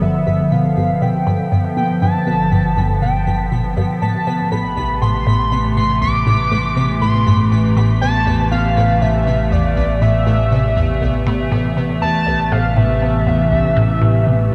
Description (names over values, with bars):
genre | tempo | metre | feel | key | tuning
ambient, sequencer-driven space music | 120 BPM | 4/4 | straight | A minor | A4 = 439 Hz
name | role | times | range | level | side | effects
pulse-width lead | melody | 0.0-14.5 s | D5 to D6 | -23 LUFS | equal | chorus, analog delay
evolving wavetable pad | sustained chords | 0.0-14.5 s | C3 to B3 | -22 LUFS | equal | chorus, built-in reverb, tremolo
resonant blip pluck | riff | 0.0-14.5 s | C2 to C3 | -22 LUFS | equal | phaser, analog delay
analog drone | bass | 0.0-14.5 s | G1 to A1 | -22 LUFS | equal | chorus, tube saturation
pulsing gated texture | texture | 0.0-14.5 s | B3 to B6 | -30 LUFS | equal | chorus, built-in reverb
room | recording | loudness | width
moderate huge ambient reverb, RT60 8.6 s | none | -16 LUFS | mono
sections
0.0-14.5 A section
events
none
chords
0.0 G; 4.0 Am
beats
| 0.02 0.52 1.02 1.52 | 2.02 2.52 3.02 3.52 | 4.02 4.52 5.02 5.52 | 6.02 6.52 7.02 7.52 | 8.02 8.52 9.02 9.52 | 10.02 10.52 11.02 11.52 | 12.02 12.52 13.02 13.52 | 14.02 14.52